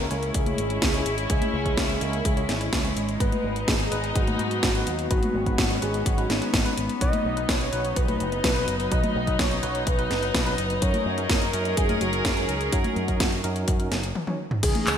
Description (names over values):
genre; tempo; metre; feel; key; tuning
italo disco; 126 BPM; 4/4; straight; unclear; A4 = 440 Hz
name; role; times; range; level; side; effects
wide unison lead; melody; 0.0-15.0 s; D#4 to D#5; -29 LUFS; equal; vintage 12-bit sampler grit, ping-pong delay
dark studio string section; sustained chords; 0.0-15.0 s; E3 to A#4; -30 LUFS; left 1 dB; none
tine electric piano; stabs; 0.0-15.0 s; E3 to C#5; -33 LUFS; right 2 dB; medium tremolo
picked electric bass with an envelope filter; bass; 0.0-15.0 s; F#1 to G#2; -30 LUFS; equal; tube saturation
house drum kit; drums; 0.1-15.0 s; congas, crash cymbal, handclaps, hi-hat, snare drum, tambourine, toms; -28 LUFS; left 1 dB; gated reverb
electronic kick drum; drums; 0.3-14.7 s; none; -26 LUFS; equal; none
room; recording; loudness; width
moderate lush hall reverb, RT60 1.7 s; bright 1980s-style digital production; -22 LUFS; side -8 dB against mid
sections
0.0-14.6 A section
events
break 14.2-14.6; drum fill 14.2-14.6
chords
0.0 C#m; 3.2 G#m; 7.0 B; 10.8 F#6